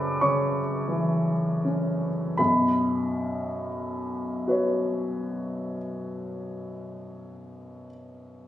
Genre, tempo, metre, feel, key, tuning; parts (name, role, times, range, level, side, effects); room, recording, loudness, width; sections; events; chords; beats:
classical, impressionist solo piano; 25-33 BPM (dotted quarters); 6/8; rubato; A4 = 444 Hz
warm grand piano; solo; 0.0-8.5 s; B1 to D6; -25 LUFS; equal
wet recital hall reverb, RT60 1.3 s; recorded on a phone in the room, club reverb, compression; -24 LUFS; side -12 dB against mid
0.0-2.4 A section; 2.4-6.6 B section
slowing down 0.0-2.4
0.0 F#7sus4; 2.4 Bsus2
0.21 | 2.37 4.47